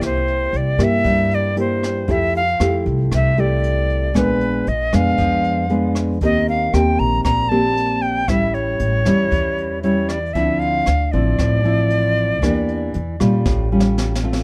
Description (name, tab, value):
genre	bossa nova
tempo	116 BPM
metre	4/4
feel	straight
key	D minor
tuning	A4 = 441 Hz
part	jazz flute	melody	0.0-13.5 s	Cb5 to Bb5	-23 LUFS	equal	none
part	nylon-string guitar	accompaniment	0.0-14.4 s	G2 to G4	-22 LUFS	equal	none
part	upright bass	bass	0.0-14.4 s	A1 to Bb2	-24 LUFS	equal	none
part	jazz brush drum kit	drums	0.0-14.4 s	hi-hat, kick drum, rim click, snare drum	-28 LUFS	equal	none
room	little or no reverb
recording	close, detailed microphones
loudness	-18 LUFS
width	mono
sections	0.0-14.4 A section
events	drum fill 13.5-14.4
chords	0.0 C7; 2.1 Fmaj9; 4.2 Bb7b9; 6.2 Eb6; 8.3 A7; 10.4 Dm9; 12.4 Em7b5; 13.5 A7b13